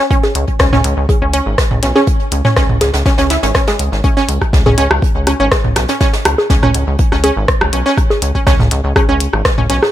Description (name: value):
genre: minimal techno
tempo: 122 BPM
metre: 4/4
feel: straight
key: unclear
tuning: A4 = 440 Hz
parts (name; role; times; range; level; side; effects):
- resonant blip pluck; riff; 0.1-9.8 s; G#3 to E4; -17 LUFS; right 1 dB; chorus, vintage 12-bit sampler grit, sidechain pumping, tape echo
- electronic kick drum; drums; 0.1-9.6 s; none; -14 LUFS; equal; small room ambience
- jazz brush drum kit; drums; 0.1-9.9 s; hi-hat, snare drum; -24 LUFS; right 2 dB; sidechain pumping on hats, high-pass filter on hats, small room ambience, high-pass filter on snare, high-pass filter on room
- booming analog drum machine; percussion; 0.2-9.9 s; bongos, rim click, toms; -16 LUFS; equal; small room ambience, tape echo
- rubbery square bass; bass; 0.4-9.8 s; G#1 to C#2; -16 LUFS; equal; sidechain pumping
- minimal click drum kit; drums; 0.4-9.8 s; hi-hat, rim click; -18 LUFS; left 1 dB; small room ambience
room: little or no reverb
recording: none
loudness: -11 LUFS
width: side -12 dB against mid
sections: 0.0-4.0 A section; 4.0-9.9 B section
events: drop 4.0-9.9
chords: 0.0 C#5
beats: | 0.11 0.60 1.09 1.58 | 2.07 2.56 3.06 3.55 | 4.04 4.53 5.02 5.52 | 6.01 6.50 6.99 7.48 | 7.97 8.47 8.96 9.45